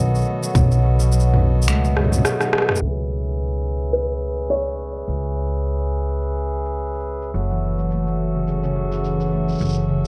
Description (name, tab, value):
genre	folktronica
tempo	106 BPM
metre	4/4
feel	swing 56% on 16ths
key	C# minor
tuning	A4 = 438 Hz
part	felt-muted upright piano	melody	0.0-7.0 s	B4 to D#5	-29 LUFS	equal	tape echo
part	pedal harmonium	sustained chords	0.0-10.1 s	F#3 to E5	-30 LUFS	equal	none
part	concert harp	arpeggios	0.0-10.1 s	B2 to D#4	-27 LUFS	equal	tape echo
part	upright bass	bass	0.0-10.1 s	F#1 to C#2	-24 LUFS	equal	none
part	organic electronic drum kit	drums	0.2-9.8 s	finger snaps, rim click, shaker, toms	-24 LUFS	equal	overdrive
part	electronic kick drum	drums	0.6-0.7 s	none	-21 LUFS	equal	none
room	light reverb, studio reverb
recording	dark, warm production, low-pass filter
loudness	-21 LUFS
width	mono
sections	0.0-2.8 A section; 2.8-10.1 B section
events	kick drops out 1.7-2.8; drum fill 2.0-2.8; filter sweep 2.8-10.1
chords	0.0 B7; 2.8 C#m7; 7.3 F#m7